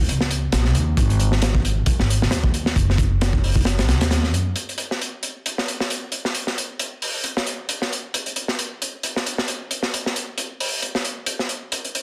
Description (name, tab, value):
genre	breakbeat, breaks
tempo	134 BPM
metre	4/4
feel	swing 55% on 16ths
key	unclear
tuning	A4 = 437 Hz
part	upright bass	bass	0.0-4.5 s	Gb1 to Gb2	-22 LUFS	equal	none
part	crunchy breakbeat drum kit	drums	0.1-12.0 s	hi-hat, kick drum, snare drum	-24 LUFS	equal	high-pass filter on kick, high-pass filter on hats, high-pass filter on snare, high-pass filter on room
room	light reverb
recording	dense, heavily limited modern master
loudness	-22 LUFS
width	mono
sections	0.0-4.6 A section; 4.6-12.0 B section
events	none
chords	none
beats	0.08 0.53 | 0.97 1.42 1.87 2.32 | 2.77 3.21 3.66 4.11 | 4.56 5.00 5.45 5.90 | 6.35 6.79 7.24 7.69 | 8.14 8.59 9.03 9.48 | 9.93 10.38 10.82 11.27 | 11.72